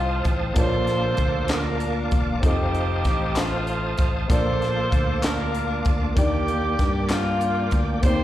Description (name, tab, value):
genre	slow gospel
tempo	64 BPM (dotted quarters)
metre	6/8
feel	straight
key	Bb major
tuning	A4 = 441 Hz
part	clear saxophone section	melody	0.0-8.2 s	A3 to C5	-26 LUFS	equal	slapback echo
part	dark baby grand piano	accompaniment	0.0-8.2 s	A2 to A5	-30 LUFS	left 3 dB	slapback echo
part	bright tonewheel organ	sustained chords	0.0-8.2 s	Bb3 to Eb6	-30 LUFS	right 1 dB	slow rotary speaker, chorus vibrato
part	fingered electric bass	bass	0.0-8.2 s	E1 to G2	-26 LUFS	equal	none
part	crisp fusion drum kit	drums	0.2-8.2 s	hi-hat, kick drum, snare drum	-23 LUFS	equal	none
part	group handclap	percussion	1.5-7.4 s	none	-32 LUFS	left 3 dB	slapback echo
room	light reverb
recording	live gig heard through the venue's PA, recital hall reverb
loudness	-20 LUFS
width	side -13 dB against mid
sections	0.0-8.2 A section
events	none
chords	0.0 F7; 0.6 Bbmaj7; 2.4 F7; 4.3 Bbmaj7; 6.2 Ebmaj7